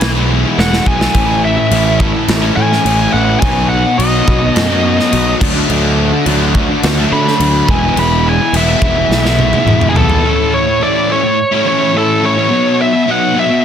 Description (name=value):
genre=quiet-loud alternative rock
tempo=106 BPM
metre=4/4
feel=straight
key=unclear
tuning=A4 = 437 Hz
part: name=biting lead guitar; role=melody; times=0.0-13.6 s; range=G#4 to B5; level=-16 LUFS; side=equal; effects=overdrive
part: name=fuzz guitar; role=riff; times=0.0-13.6 s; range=A2 to E4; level=-15 LUFS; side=left 1 dB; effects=distortion
part: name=fuzz picked electric bass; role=bass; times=0.0-10.2 s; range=E1 to D3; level=-16 LUFS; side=equal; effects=overdrive
part: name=big rock drum kit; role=drums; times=0.0-10.2 s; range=crash cymbal, kick drum, snare drum, toms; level=-17 LUFS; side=equal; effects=none
part: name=cranked stack guitar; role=riff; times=1.1-9.9 s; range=A2 to A4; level=-20 LUFS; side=equal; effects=overdrive
room=light reverb, small room ambience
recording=dense, heavily limited modern master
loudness=-10 LUFS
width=side -8 dB against mid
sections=0.0-10.2 A section; 10.2-13.6 B section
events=lead electric guitar solo 0.0-10.2; drum fill 0.6-1.2, 9.1-10.2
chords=0.0 E; 1.2 A; 3.4 B; 5.4 D6; 7.7 E; 10.2 A; 12.5 B